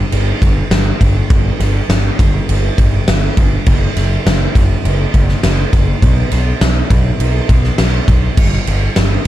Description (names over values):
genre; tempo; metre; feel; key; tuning
rock, shoegaze and dream pop; 102 BPM; 4/4; straight; G major; A4 = 441 Hz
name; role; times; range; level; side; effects
fuzz picked electric bass; bass; 0.0-9.2 s; F#1 to B1; -14 LUFS; equal; overdrive
huge arena drum kit; drums; 0.1-9.1 s; crash cymbal, kick drum, ride cymbal, snare drum; -13 LUFS; equal; none
room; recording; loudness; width
little or no reverb; dark, warm production; -11 LUFS; side -14 dB against mid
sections
0.0-9.3 A section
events
none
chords
none